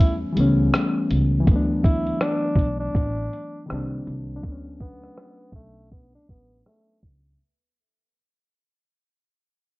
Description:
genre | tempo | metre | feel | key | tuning
lo-fi hip hop | 81 BPM | 4/4 | swing 58% on 16ths | unclear | A4 = 441 Hz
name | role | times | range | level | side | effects
growling tenor saxophone | melody | 0.0-7.0 s | A3 to E4 | -29 LUFS | equal | none
overdriven reed electric piano | accompaniment | 0.0-7.4 s | Eb3 to D4 | -25 LUFS | left 2 dB | cassette tape
upright bass | bass | 0.0-7.3 s | A1 to E2 | -25 LUFS | equal | none
dusty soul sampler-style drum kit | drums | 0.0-7.4 s | hi-hat, kick drum, rim click | -20 LUFS | equal | none
room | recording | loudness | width
light reverb | worn, warbling old tape, cassette tape, warbly pitch drift, low-pass filter, nothing above 8.0 kHz | -20 LUFS | side -21 dB against mid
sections
0.0-7.4 A section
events
fade-out 0.0-7.4; filter sweep 0.0-7.4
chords
0.0 A7/C#; 1.5 D69; 3.7 Cm7; 4.4 Bm7

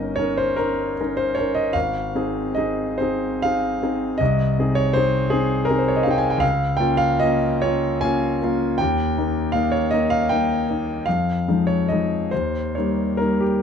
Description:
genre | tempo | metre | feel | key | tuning
classical, romantic nocturne for solo piano | 42-55 BPM (dotted quarters) | 12/8 | rubato | Ab major | A4 = 442 Hz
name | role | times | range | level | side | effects
clear grand piano | solo | 0.0-13.6 s | G1 to Ab5 | -19 LUFS | equal | none
room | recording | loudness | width
light reverb | dark, warm production, faint mains hum | -19 LUFS | side -7 dB against mid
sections
0.0-13.6 A section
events
none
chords
0.0 Eb7/G; 1.7 Ab; 4.2 Ab/C; 6.4 Bbm/Db; 8.8 Eb; 11.1 Fm7; 12.3 Eb

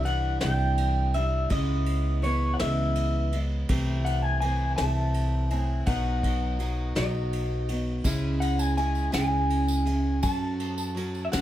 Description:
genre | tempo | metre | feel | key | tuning
acoustic folk duo or small band | 55 BPM (dotted quarters) | 6/8 | straight | unclear | A4 = 438 Hz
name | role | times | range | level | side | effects
electric guitar through a small old amp | melody | 0.0-11.4 s | C#5 to A5 | -30 LUFS | left 2 dB | harmonic tremolo
picked steel-string acoustic guitar | accompaniment | 0.0-11.4 s | B2 to A4 | -30 LUFS | equal | none
upright bass | bass | 0.0-11.4 s | B1 to F#2 | -27 LUFS | equal | none
soft brush drum kit | drums | 0.1-11.4 s | kick drum, ride cymbal, snare drum | -34 LUFS | equal | none
tambourine | percussion | 8.0-11.4 s | none | -40 LUFS | right 4 dB | none
room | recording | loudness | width
light reverb | none | -24 LUFS | side -13 dB against mid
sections
0.0-11.4 A section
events
none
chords
0.0 Cadd9; 1.5 C#m7; 3.7 Am/C; 5.9 B; 8.1 C#m; 10.2 F#m

